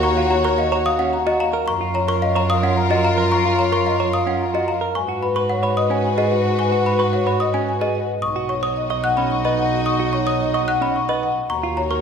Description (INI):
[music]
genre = classical, minimalist pattern music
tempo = 110 BPM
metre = 3/4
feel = straight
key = G# dorian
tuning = A4 = 440 Hz
[part]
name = marimba with soft mallets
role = melody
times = 0.0-11.9 s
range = B4 to C#6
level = -24 LUFS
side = left 6 dB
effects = none
[part]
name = clear clarinet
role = second line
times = 0.0-12.0 s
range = D#4 to F#4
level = -26 LUFS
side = right 2 dB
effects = none
[part]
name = rich studio string section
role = sustained chords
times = 0.0-12.0 s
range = E#4 to D#5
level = -25 LUFS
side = left 4 dB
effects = none
[part]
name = direct-recorded clean electric guitar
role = arpeggios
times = 0.0-12.0 s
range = C#4 to D#5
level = -26 LUFS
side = right 7 dB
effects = none
[part]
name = trough xylophone with rubber mallets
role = arpeggios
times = 0.0-12.0 s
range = D#5 to F#6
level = -24 LUFS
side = left 2 dB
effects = none
[part]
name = rich double bass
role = bass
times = 0.0-12.0 s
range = B1 to G#2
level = -24 LUFS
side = right 3 dB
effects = none
[sound]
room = wet scoring stage reverb, RT60 2.0 s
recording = minimal, uncompressed stereo recording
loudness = -17 LUFS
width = side -6 dB against mid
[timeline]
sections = 0.0-12.0 A section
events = none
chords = 0.0 D#m7; 1.7 F#maj7; 4.9 G#m7; 8.2 B; 11.5 D#m7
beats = | 0.04 0.58 1.13 | 1.68 2.22 2.77 | 3.31 3.86 4.40 | 4.95 5.49 6.04 | 6.58 7.13 7.67 | 8.22 8.77 9.31 | 9.86 10.40 10.95 | 11.49